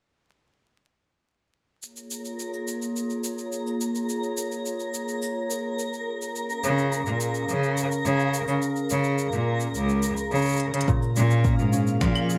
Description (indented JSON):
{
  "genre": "folktronica",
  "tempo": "106 BPM",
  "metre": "4/4",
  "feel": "straight",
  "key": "Bb minor",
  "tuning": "A4 = 440 Hz",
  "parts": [
    { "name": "warbly tape-like pad", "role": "sustained chords", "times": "1.8-12.4 s", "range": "Bb3 to F5", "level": "-33 LUFS", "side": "equal", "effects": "chorus, built-in reverb" },
    { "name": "organic electronic drum kit", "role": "drums", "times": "1.8-12.4 s", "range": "claves, finger snaps, hi-hat, shaker", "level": "-37 LUFS", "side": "equal", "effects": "overdrive" },
    { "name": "twinkling granular texture", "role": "texture", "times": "2.2-12.4 s", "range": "F4 to Bb5", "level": "-37 LUFS", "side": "equal", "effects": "built-in reverb" },
    { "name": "bright cello", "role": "bass", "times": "6.6-12.4 s", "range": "Db2 to Db3", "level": "-26 LUFS", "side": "equal", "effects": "none" },
    { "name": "concert harp", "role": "arpeggios", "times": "10.9-12.4 s", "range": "Bb2 to Ab4", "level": "-25 LUFS", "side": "equal", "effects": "vintage 12-bit sampler grit" },
    { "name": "electronic kick drum", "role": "drums", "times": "10.9-12.1 s", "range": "none", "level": "-28 LUFS", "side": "equal", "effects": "overdrive" }
  ],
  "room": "moderate echo chamber reverb, RT60 2.5 s",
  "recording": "vinyl crackle",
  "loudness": "-26 LUFS",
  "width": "mono",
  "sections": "1.8-10.9 A section; 10.9-12.4 B section",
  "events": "drum fill 10.6",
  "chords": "1.8 Bbm7; 6.4 Db6; 10.9 Bbm7"
}